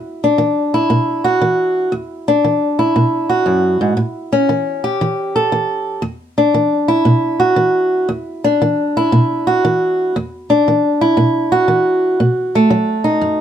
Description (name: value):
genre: blues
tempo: 117 BPM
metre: 4/4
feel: swing 66% on 8ths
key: unclear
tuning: A4 = 439 Hz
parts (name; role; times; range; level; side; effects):
- fingerpicked old ladder-braced acoustic guitar; solo; 0.0-13.4 s; E2 to A4; -13 LUFS; equal; none
room: moderate studio reverb, RT60 0.5 s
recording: none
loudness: -13 LUFS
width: side -9 dB against mid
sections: 0.0-13.4 A section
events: none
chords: 0.0 E7(no3); 4.0 A7; 6.0 E5; 12.2 B7